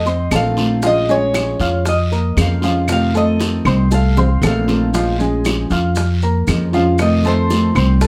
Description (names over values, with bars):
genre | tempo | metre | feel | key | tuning
latin, Cuban son and guajira | 117 BPM | 4/4 | straight | Bb minor | A4 = 440 Hz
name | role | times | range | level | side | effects
Cuban tres | melody | 0.0-8.1 s | C5 to F5 | -23 LUFS | equal | none
upright bass | bass | 0.0-8.1 s | Bb1 to F2 | -19 LUFS | equal | none
warm grand piano | arpeggios | 0.1-8.1 s | F3 to F6 | -24 LUFS | equal | none
bongos | percussion | 0.1-8.1 s | none | -26 LUFS | equal | none
maracas | percussion | 0.1-8.1 s | none | -36 LUFS | equal | none
nylon-string guitar | accompaniment | 0.3-8.1 s | C3 to F4 | -22 LUFS | equal | none
claves | percussion | 0.3-8.0 s | none | -29 LUFS | equal | none
guiro | percussion | 0.3-8.1 s | none | -33 LUFS | equal | none
room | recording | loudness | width
wet studio reverb, RT60 0.6 s | none | -16 LUFS | mono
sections
0.0-8.1 A section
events
Cuban tres solo 0.0-8.1; drum fill 3.9-4.9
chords
0.0 F7; 0.8 Bbm7; 2.9 F7; 4.9 Bbm7; 7.0 F7